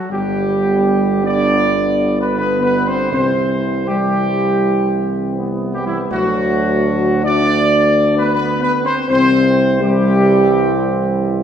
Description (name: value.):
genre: classical.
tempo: 80 BPM.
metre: 4/4.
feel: straight.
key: C lydian.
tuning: A4 = 443 Hz.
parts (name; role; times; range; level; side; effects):
dark trumpet section; melody; 0.0-11.3 s; E4 to D5; -17 LUFS; right 1 dB; none.
dark French horn section; sustained chords; 0.0-11.3 s; E3 to D4; -19 LUFS; left 2 dB; none.
warm trombone section; sustained chords; 0.1-11.4 s; D3 to C4; -23 LUFS; right 1 dB; none.
warm tuba; bass; 0.1-11.4 s; G1 to D2; -20 LUFS; right 2 dB; none.
room: wet scoring stage reverb, RT60 1.5 s.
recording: heard from further back in the room.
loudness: -13 LUFS.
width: side -8 dB against mid.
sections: 0.1-11.4 A section.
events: none.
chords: 0.1 G; 3.1 C; 6.1 D; 9.1 C.